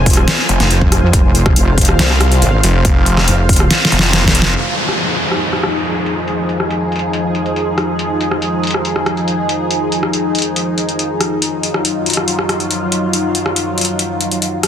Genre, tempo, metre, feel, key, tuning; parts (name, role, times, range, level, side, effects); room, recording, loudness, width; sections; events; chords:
heavy wobble dubstep; 140 BPM; 4/4; half-time; F phrygian; A4 = 441 Hz
lush unison pad; sustained chords; 0.0-14.7 s; F3 to Ab5; -18 LUFS; equal; chorus, phaser, sidechain pumping
wobble bass; bass; 0.0-3.7 s; F1 to F2; -13 LUFS; equal; chorus, overdrive
dubstep drum kit; drums; 0.1-14.7 s; hi-hat, rim click, snare drum; -16 LUFS; equal; overdrive, low-pass filter on hats, low-pass filter on snare, low-pass filter on room
electronic kick drum; drums; 0.1-4.3 s; -14 LUFS; equal; overdrive
snarling distorted saw bass; bass; 0.5-4.5 s; F1 to C2; -14 LUFS; equal; distortion, overdrive
downlifter; sound effects; 4.6-8.0 s; -20 LUFS; equal
light reverb; dense, heavily limited modern master; -12 LUFS; side -9 dB against mid
0.0-4.6 A section; 4.6-14.7 B section
drop 0.0-4.6; drum fill 3.7-4.6; filter sweep on drum 4.6-14.7
0.0 Fm; 4.6 Fm7; 11.4 Ebmadd9/Gb